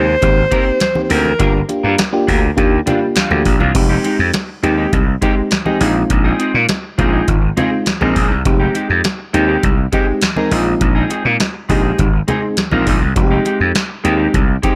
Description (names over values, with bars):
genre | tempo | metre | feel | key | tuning
early-eighties boogie funk | 102 BPM | 4/4 | straight | F dorian | A4 = 440 Hz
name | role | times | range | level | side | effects
breathy alto saxophone | melody | 0.0-1.7 s | Bb4 to C5 | -20 LUFS | equal | none
mellow FM electric piano | accompaniment | 0.0-14.8 s | Ab3 to Bb4 | -21 LUFS | equal | chorus
clean electric guitar | riff | 0.0-14.8 s | G3 to Bb4 | -24 LUFS | equal | analog chorus
gritty slap bass | bass | 0.0-14.6 s | F1 to Bb2 | -18 LUFS | equal | overdrive
booming analog drum machine | drums | 0.2-14.8 s | crash cymbal, hi-hat, kick drum, snare drum | -20 LUFS | equal | none
congas | percussion | 0.2-14.8 s | none | -27 LUFS | equal | none
room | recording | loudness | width
little or no reverb | none | -15 LUFS | mono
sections
0.0-3.8 A section; 3.8-14.8 B section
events
none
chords
0.2 Abmaj9; 1.4 Gm7; 2.6 Ebmaj9; 3.8 Fm9; 5.8 Bb9sus4; 8.5 Fm9; 10.5 Bb9sus4; 13.2 Fm9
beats
0.22 0.81 | 1.40 1.99 2.57 3.16 | 3.75 4.34 4.93 5.51 | 6.10 6.69 7.28 7.87 | 8.46 9.04 9.63 10.22 | 10.81 11.40 11.99 12.57 | 13.16 13.75 14.34